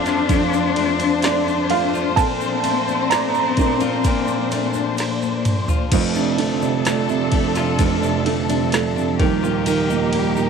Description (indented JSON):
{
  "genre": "pop ballad",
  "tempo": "64 BPM",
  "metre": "4/4",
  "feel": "straight",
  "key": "unclear",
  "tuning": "A4 = 440 Hz",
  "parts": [
    { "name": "warm studio cello section", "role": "second line", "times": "0.0-5.9 s", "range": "Bb3 to D4", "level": "-23 LUFS", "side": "left 12 dB", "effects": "none" },
    { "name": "dark upright piano", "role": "accompaniment", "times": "0.0-10.5 s", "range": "Eb1 to Bb5", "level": "-21 LUFS", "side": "right 11 dB", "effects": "none" },
    { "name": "warm studio string section", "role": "sustained chords", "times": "0.0-10.5 s", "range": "Bb2 to C5", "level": "-24 LUFS", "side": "left 2 dB", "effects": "none" },
    { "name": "nylon-string guitar", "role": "arpeggios", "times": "0.0-10.5 s", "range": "F2 to F4", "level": "-25 LUFS", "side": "left 9 dB", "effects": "none" },
    { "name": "smooth R&B drum kit", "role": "drums", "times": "0.1-10.3 s", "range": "crash cymbal, kick drum, ride cymbal, snare drum, toms", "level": "-24 LUFS", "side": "equal", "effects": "none" },
    { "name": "egg shaker", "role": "percussion", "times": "0.1-10.5 s", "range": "none", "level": "-38 LUFS", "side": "right 13 dB", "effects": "none" }
  ],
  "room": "light reverb, studio reverb",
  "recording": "1960s-style stereo with parts hard left and right",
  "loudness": "-17 LUFS",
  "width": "side -6 dB against mid",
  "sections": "0.0-5.9 A section; 5.9-10.5 A section",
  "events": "upright piano solo 0.0-5.9; drum fill 5.0-5.9",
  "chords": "0.0 F6; 2.2 Bbmaj7; 5.9 F6; 9.2 Ebadd9",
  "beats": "0.29 1.23 | 2.17 3.10 4.04 4.98 | 5.92 6.85 7.79 8.73 | 9.67"
}